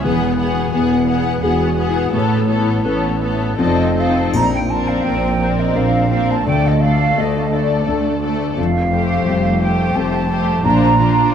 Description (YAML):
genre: cinematic, emotional film score for orchestra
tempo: 85 BPM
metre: 3/4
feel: rubato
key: A major, Bb major from 4.3 s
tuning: A4 = 439 Hz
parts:
  - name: muted symphonic violin section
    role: melody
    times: 0.0-11.3 s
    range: C5 to F#5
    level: -27 LUFS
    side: left 6 dB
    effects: none
  - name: muted studio violin section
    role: second line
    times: 0.0-11.3 s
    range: F4 to Bb4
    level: -26 LUFS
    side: left 4 dB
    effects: none
  - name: dark baby grand piano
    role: accompaniment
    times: 0.0-11.3 s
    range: Bb1 to Bb4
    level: -21 LUFS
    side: left 3 dB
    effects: none
  - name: muted symphonic viola section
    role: accompaniment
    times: 0.0-11.3 s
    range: A3 to D4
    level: -23 LUFS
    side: right 1 dB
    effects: none
  - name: concert harp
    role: arpeggios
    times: 0.0-11.3 s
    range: F2 to F#5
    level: -24 LUFS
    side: left 8 dB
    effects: none
  - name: muted symphonic cello section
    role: bass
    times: 0.0-11.3 s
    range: D2 to Bb2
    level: -22 LUFS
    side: right 3 dB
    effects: none
  - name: muted symphonic double bass section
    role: bass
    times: 0.1-11.3 s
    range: E1 to D2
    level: -22 LUFS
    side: right 4 dB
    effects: none
  - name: small flute group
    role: second line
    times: 3.6-11.3 s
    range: D5 to Bb5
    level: -20 LUFS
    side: right 2 dB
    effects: none
  - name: triangle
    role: percussion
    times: 4.3-5.7 s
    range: none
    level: -41 LUFS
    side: left 2 dB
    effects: none
room: moderate concert hall reverb, RT60 1.7 s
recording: dark, warm production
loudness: -14 LUFS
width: side -8 dB against mid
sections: 0.0-4.3 A section; 4.3-11.3 B section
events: none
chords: 0.1 Eadd9; 2.1 Aadd9; 3.6 F7; 4.3 Bbadd9; 6.5 Dm; 8.6 Fadd9; 10.6 Bbadd9